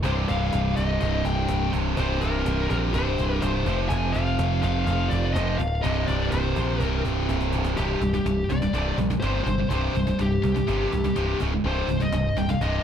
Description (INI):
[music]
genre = heavy metal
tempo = 124 BPM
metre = 4/4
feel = straight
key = unclear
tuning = A4 = 441 Hz
[part]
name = heavy high-gain guitar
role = riff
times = 0.0-12.8 s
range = C2 to F3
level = -29 LUFS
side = left 11 dB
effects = distortion
[part]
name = tight distorted guitar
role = riff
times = 0.0-12.8 s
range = C2 to F3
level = -28 LUFS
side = right 11 dB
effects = distortion
[part]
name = growling picked electric bass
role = bass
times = 0.0-12.8 s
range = C1 to C2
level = -26 LUFS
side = equal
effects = overdrive
[part]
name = cajon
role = drums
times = 0.0-12.7 s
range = none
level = -35 LUFS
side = equal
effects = none
[part]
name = high-gain lead guitar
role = melody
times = 0.1-12.8 s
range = G4 to Ab5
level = -29 LUFS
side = left 3 dB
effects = distortion
[sound]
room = little or no reverb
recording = dark, warm production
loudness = -22 LUFS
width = side -9 dB against mid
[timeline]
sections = 0.0-7.8 A section; 7.8-12.8 B section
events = drum fill 7.3-7.8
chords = 0.0 C5; 3.7 F5; 5.8 C5; 11.4 Db5; 11.6 Cm